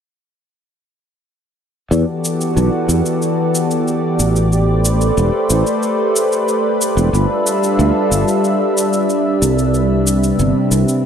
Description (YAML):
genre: sunset chillout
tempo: 92 BPM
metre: 4/4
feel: straight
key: unclear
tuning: A4 = 439 Hz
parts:
  - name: lush unison pad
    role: sustained chords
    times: 1.9-11.1 s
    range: C3 to E5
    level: -15 LUFS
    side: equal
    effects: chorus
  - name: sustaining fretless electric bass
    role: bass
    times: 1.9-10.8 s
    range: E1 to E2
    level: -15 LUFS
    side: right 1 dB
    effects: lush chorus
  - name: shaker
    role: drums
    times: 1.9-11.0 s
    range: none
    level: -23 LUFS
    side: left 1 dB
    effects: overdrive, studio reverb
room: moderate plate reverb, RT60 2.7 s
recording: none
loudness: -13 LUFS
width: side -8 dB against mid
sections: 1.9-11.1 A section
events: none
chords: 1.9 Em11; 4.5 Am11; 7.1 G13; 9.7 Cmaj9